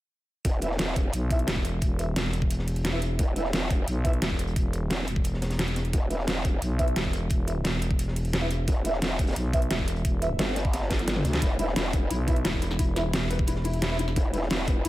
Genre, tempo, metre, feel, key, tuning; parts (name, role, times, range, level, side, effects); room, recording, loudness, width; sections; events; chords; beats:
dark technical drum and bass; 175 BPM; 4/4; straight; E minor; A4 = 440 Hz
growl bass; bass; 0.4-1.1, 3.2-6.6, 8.7-12.1, 14.2-14.8 s; E1 to G1; -29 LUFS; equal; chorus, overdrive, sidechain pumping
dubstep drum kit; drums; 0.4-14.9 s; hi-hat, snare drum, toms; -30 LUFS; equal
electronic kick drum; drums; 0.4-14.7 s; -26 LUFS; equal
crunchy breakbeat drum kit; drums; 0.5-14.9 s; hi-hat, snare drum; -40 LUFS; equal; high-pass filter on hats, high-pass filter on snare, high-pass filter on room
mellow brass ensemble; stabs; 0.6-14.4 s; E4 to E5; -35 LUFS; right 2 dB; analog delay
growling FM bass; bass; 1.1-14.9 s; E1 to D2; -28 LUFS; equal
felt-muted upright piano; arpeggios; 11.4-14.9 s; E4 to B4; -33 LUFS; left 4 dB; sidechain pumping, analog delay
light reverb; -24 LUFS; side -16 dB against mid
0.4-14.9 A section
drum fill 10.9-11.4
0.4 E5
| 0.45 0.79 1.14 1.48 | 1.82 2.16 2.51 2.85 | 3.19 3.54 3.88 4.22 | 4.56 4.91 5.25 5.59 | 5.93 6.28 6.62 6.96 | 7.31 7.65 7.99 8.34 | 8.68 9.02 9.36 9.71 | 10.05 10.39 10.73 11.08 | 11.42 11.76 12.11 12.45 | 12.79 13.13 13.48 13.82 | 14.16 14.51 14.85